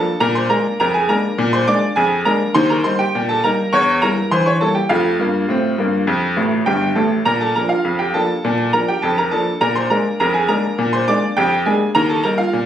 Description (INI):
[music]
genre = ragtime piano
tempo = 102 BPM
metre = 2/4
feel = straight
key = Bb major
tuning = A4 = 440 Hz
[part]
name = clear upright piano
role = solo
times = 0.0-12.7 s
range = G1 to D6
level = -14 LUFS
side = equal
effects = none
[sound]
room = moderate small room reverb, RT60 0.5 s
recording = recorded on a phone in the room, studio reverb, vinyl crackle, compression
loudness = -14 LUFS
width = side -10 dB against mid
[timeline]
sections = 0.0-12.7 A section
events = upright piano fill 6.4-7.3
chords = 0.2 Bb7; 2.6 Eb; 3.7 Edim7; 4.9 Bb5/F; 6.1 F; 7.3 Bb; 9.6 Bb7; 12.0 Eb